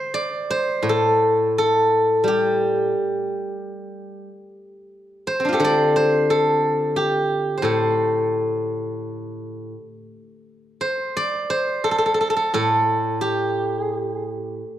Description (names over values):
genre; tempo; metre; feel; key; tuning
chinese traditional, Chinese solo plucked strings; 87 BPM; 4/4; uneven beats, rubato; D yu mode; A4 = 442 Hz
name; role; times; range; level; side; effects
steel-string zither; solo; 0.0-14.8 s; A2 to D5; -19 LUFS; equal; none
room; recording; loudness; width
moderate recital hall reverb, RT60 1.5 s; none; -18 LUFS; side -12 dB against mid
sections
0.0-14.8 A section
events
none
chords
none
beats
0.15 0.86 | 1.56 2.24 2.91 3.60 | 4.27 4.94 5.61 6.27 | 6.95 7.64 8.32 9.02 | 9.74 10.45 11.17 11.87 | 12.55 13.24 13.92 14.60